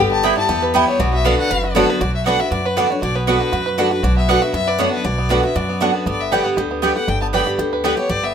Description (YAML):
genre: bluegrass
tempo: 237 BPM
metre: 4/4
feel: straight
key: B minor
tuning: A4 = 440 Hz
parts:
  - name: bluegrass banjo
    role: melody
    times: 0.0-8.3 s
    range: B3 to B4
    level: -23 LUFS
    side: right 4 dB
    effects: none
  - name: clear fiddle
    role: melody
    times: 0.0-8.3 s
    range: A4 to B5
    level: -22 LUFS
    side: left 3 dB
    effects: none
  - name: lap resonator guitar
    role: second line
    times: 0.0-1.8 s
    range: F#4 to G4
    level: -23 LUFS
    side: left 6 dB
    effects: none
  - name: picked steel-string acoustic guitar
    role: accompaniment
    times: 0.0-8.3 s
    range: F#2 to G4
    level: -21 LUFS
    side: left 2 dB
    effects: none
  - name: upright bass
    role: bass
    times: 0.0-8.3 s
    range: F#1 to F#2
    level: -22 LUFS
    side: equal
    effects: none
  - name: mandolin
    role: stabs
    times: 0.2-7.9 s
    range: B3 to G5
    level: -19 LUFS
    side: right 5 dB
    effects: none
room: moderate small room reverb, RT60 0.6 s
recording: minimal, uncompressed stereo recording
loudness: -15 LUFS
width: side -8 dB against mid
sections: 0.0-2.0 A section; 2.0-8.3 B section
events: fiddle solo 0.0-2.0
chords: 0.0 Em/G; 1.0 Bm; 6.1 G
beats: 0.24 0.49 0.74 | 1.00 1.25 1.50 1.75 | 2.01 2.26 2.51 2.77 | 3.02 3.27 3.53 3.78 | 4.04 4.29 4.54 4.80 | 5.05 5.30 5.56 5.81 | 6.07 6.32 6.57 6.83 | 7.08 7.34 7.59 7.84 | 8.10